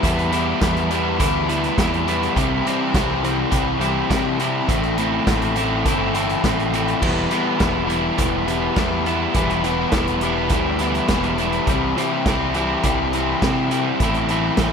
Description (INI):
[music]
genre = indie rock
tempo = 103 BPM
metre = 4/4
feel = straight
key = E minor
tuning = A4 = 441 Hz
[part]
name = overdriven electric guitar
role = riff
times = 0.0-14.7 s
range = A2 to E4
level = -19 LUFS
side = left 1 dB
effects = spring reverb
[part]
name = growling fingered electric bass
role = bass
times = 0.0-14.7 s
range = E1 to C3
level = -26 LUFS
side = right 1 dB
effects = overdrive
[part]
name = vintage drum kit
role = drums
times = 0.0-14.7 s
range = crash cymbal, hi-hat, kick drum, snare drum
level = -24 LUFS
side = right 1 dB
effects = none
[sound]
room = light reverb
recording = none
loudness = -17 LUFS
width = side -6 dB against mid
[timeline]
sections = 0.0-14.7 A section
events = none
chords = 0.0 Em7; 2.4 C; 4.7 Am7; 7.0 Em; 11.7 C; 14.0 Am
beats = | 0.03 0.61 1.20 1.78 | 2.37 2.95 3.53 4.12 | 4.70 5.28 5.86 6.45 | 7.03 7.61 8.19 8.77 | 9.36 9.94 10.52 11.10 | 11.68 12.26 12.84 13.42 | 14.01 14.59